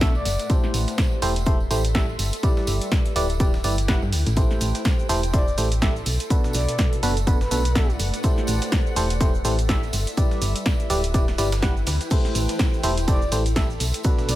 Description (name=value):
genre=piano house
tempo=124 BPM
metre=4/4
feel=swing 58% on 16ths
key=A dorian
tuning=A4 = 439 Hz
part: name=barking FM electric piano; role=riff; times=0.0-14.4 s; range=B2 to F#5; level=-27 LUFS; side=equal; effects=chorus, sidechain pumping, ping-pong delay
part: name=solid FM bass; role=bass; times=0.0-14.4 s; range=D1 to G2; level=-24 LUFS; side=equal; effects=tube saturation, sidechain pumping
part: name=breakbeat sampler-style drum kit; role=drums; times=0.0-14.4 s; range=hi-hat, snare drum, tambourine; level=-37 LUFS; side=right 1 dB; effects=sidechain pumping on perc, high-pass filter on perc, small room ambience, high-pass filter on snare, sidechain pumping on hats, high-pass filter on hats
part: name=electronic kick drum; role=drums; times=0.0-14.2 s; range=none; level=-21 LUFS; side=equal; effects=small room ambience
part: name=punchy analog drum machine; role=drums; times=0.0-14.4 s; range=cabasa, crash cymbal, hi-hat, ride cymbal, snare drum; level=-28 LUFS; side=right 1 dB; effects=small room ambience
part: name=tambourine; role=percussion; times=0.0-14.4 s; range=none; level=-38 LUFS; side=right 4 dB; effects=none
part: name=downlifter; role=sound effects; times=0.0-0.5 s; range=none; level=barely audible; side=none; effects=none
part: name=granular cloud pad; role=texture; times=0.0-14.4 s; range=A3 to C6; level=-33 LUFS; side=left 1 dB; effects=built-in reverb, sidechain pumping
part: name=breathy flute-like synth lead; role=melody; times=0.2-0.5, 5.3-7.9, 13.1-14.4 s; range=B4 to D5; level=-33 LUFS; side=left 1 dB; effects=chorus, ping-pong delay
room=little or no reverb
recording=none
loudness=-19 LUFS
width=side -15 dB against mid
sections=0.0-14.4 A section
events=none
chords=0.5 Am7; 2.2 Em7; 4.4 Am7; 6.1 Bm7; 8.2 Am7; 9.9 Em7; 12.1 Am7; 13.8 Bm7